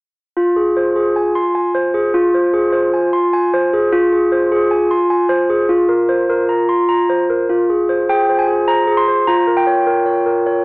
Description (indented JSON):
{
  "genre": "classical, lullaby for handbells",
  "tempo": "101 BPM",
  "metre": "3/4",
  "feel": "straight",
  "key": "F minor",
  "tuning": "A4 = 441 Hz",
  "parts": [
    { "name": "handbells", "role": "solo", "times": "0.4-10.6 s", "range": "F4 to C6", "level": "-12 LUFS", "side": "equal", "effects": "none" }
  ],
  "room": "little or no reverb",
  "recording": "dry, gritty hardware recording, transformer saturation, cassette tape, AM radio sound",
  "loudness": "-12 LUFS",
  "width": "side -30 dB against mid",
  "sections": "0.4-7.5 A section; 7.5-10.6 B section",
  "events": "none",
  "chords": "0.4 Fm; 5.7 Fsus4; 7.5 Fm; 9.3 Gm7b5/F"
}